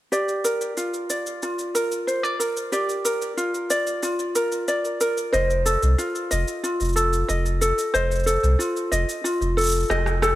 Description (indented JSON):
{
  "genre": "folktronica",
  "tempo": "92 BPM",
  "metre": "4/4",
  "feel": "straight",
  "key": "Bb major",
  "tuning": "A4 = 439 Hz",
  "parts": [
    { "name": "ukulele", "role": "arpeggios", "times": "0.1-10.4 s", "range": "F4 to Eb5", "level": "-22 LUFS", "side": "equal", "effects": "low-pass filter, tape echo" },
    { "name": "electronic shaker and rim click", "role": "drums", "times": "0.1-10.4 s", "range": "none", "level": "-30 LUFS", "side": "equal", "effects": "none" },
    { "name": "warm sub bass", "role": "bass", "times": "5.3-10.3 s", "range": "F1 to C2", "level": "-22 LUFS", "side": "equal", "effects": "none" }
  ],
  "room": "light reverb, digital ambience",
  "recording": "none",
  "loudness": "-21 LUFS",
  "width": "side -15 dB against mid",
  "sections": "0.1-10.4 A section",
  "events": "drum fill 9.9-10.4",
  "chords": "0.1 Bb6; 5.3 F7",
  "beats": "| 0.12 0.77 1.42 2.07 | 2.73 3.38 4.03 4.68 | 5.33 5.99 6.64 7.29 | 7.94 8.59 9.25 9.90"
}